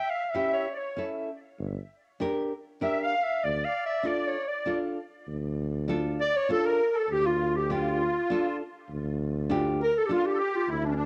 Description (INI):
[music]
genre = klezmer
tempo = 99 BPM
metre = 3/4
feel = straight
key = D harmonic minor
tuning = A4 = 440 Hz
[part]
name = breathy clarinet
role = melody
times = 0.0-11.1 s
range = C#4 to G5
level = -30 LUFS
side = equal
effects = cassette tape, plate reverb
[part]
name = musette accordion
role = second line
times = 0.0-11.1 s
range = C#4 to F5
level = -36 LUFS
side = equal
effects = cassette tape, plate reverb, tape echo
[part]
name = nylon-string guitar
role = accompaniment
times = 0.3-10.4 s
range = C#4 to Bb4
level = -32 LUFS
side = equal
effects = cassette tape, plate reverb
[part]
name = mellow tuba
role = bass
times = 1.6-11.1 s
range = G1 to D2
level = -34 LUFS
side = equal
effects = none
[sound]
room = moderate studio reverb, RT60 0.6 s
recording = home recording on cassette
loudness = -28 LUFS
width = mono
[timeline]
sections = 0.0-5.3 A section; 5.3-11.1 B section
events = speeding up 0.0-11.1; clarinet solo 0.0-5.3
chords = 0.0 A; 1.6 Gm; 3.4 Dm